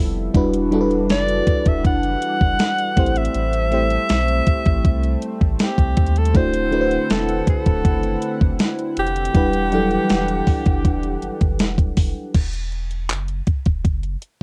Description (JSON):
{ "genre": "contemporary R&B", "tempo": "80 BPM", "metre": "4/4", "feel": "straight", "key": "E minor", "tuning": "A4 = 440 Hz", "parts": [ { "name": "FM electric piano", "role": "accompaniment", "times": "0.0-12.4 s", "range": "F#3 to F#5", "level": "-25 LUFS", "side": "equal", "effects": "phaser" }, { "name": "chorused pulse-width pad", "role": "sustained chords", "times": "0.0-12.3 s", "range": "D3 to F#5", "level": "-31 LUFS", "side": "equal", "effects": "sidechain pumping" }, { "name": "warm sub bass", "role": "bass", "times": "0.0-14.2 s", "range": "D1 to D#2", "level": "-26 LUFS", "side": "equal", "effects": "none" }, { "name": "crisp 8-bit digital drum machine", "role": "drums", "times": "0.3-14.4 s", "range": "crash cymbal, handclaps, hi-hat, kick drum, snare drum", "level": "-21 LUFS", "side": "equal", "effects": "overdrive" }, { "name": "clear alto saxophone", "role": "melody", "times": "1.1-11.6 s", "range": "G4 to F#5", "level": "-25 LUFS", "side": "equal", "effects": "tape echo" } ], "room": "light reverb", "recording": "none", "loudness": "-19 LUFS", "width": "mono", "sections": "0.0-12.3 A section; 12.3-14.4 B section", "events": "none", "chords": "0.3 Em9; 3.0 Am7; 6.3 D9; 9.3 Em9; 12.3 Esus2", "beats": "| 0.34 1.09 1.84 2.60 | 3.35 4.09 4.84 5.59 | 6.34 7.09 7.84 8.60 | 9.35 10.10 10.85 11.60 | 12.35 13.10 13.85" }